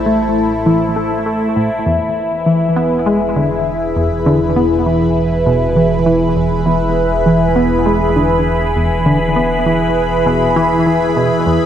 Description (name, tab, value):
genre	ambient, sequencer-driven space music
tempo	100 BPM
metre	4/4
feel	straight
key	unclear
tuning	A4 = 440 Hz
part	phased analog pad	sustained chords	0.0-11.7 s	E3 to B5	-14 LUFS	left 1 dB	phaser, chorus
part	fat analog bass	bass	0.0-11.7 s	E1 to A1	-23 LUFS	equal	none
part	tight sequenced synth	riff	0.1-11.6 s	E2 to B3	-16 LUFS	equal	chorus, tape echo
room	wet lush hall reverb, RT60 2.7 s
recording	dreamy mix soaked in reverb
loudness	-12 LUFS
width	side -9 dB against mid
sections	0.0-11.7 A section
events	none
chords	0.0 Am; 1.9 E